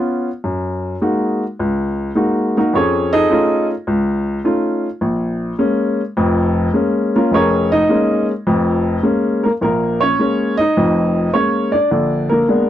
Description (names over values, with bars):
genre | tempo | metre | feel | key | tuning
solo jazz | 104 BPM | 4/4 | swing 68% on 8ths | Bb minor | A4 = 439 Hz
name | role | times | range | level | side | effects
warm upright piano | solo | 0.0-12.7 s | F1 to Eb5 | -14 LUFS | equal | none
room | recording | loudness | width
light reverb | dry, close 1970s-style studio recording | -14 LUFS | side -11 dB against mid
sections
0.0-9.6 A section; 9.6-12.7 B section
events
upright piano solo 0.0-9.6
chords
0.4 Gb69; 2.7 F7alt; 5.0 Bbm7; 11.9 Bb7b9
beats
| 0.44 1.01 1.58 2.16 | 2.73 3.30 3.87 4.45 | 5.02 5.59 6.17 6.74 | 7.32 7.89 8.46 9.04 | 9.62 10.19 10.77 11.34 | 11.92 12.49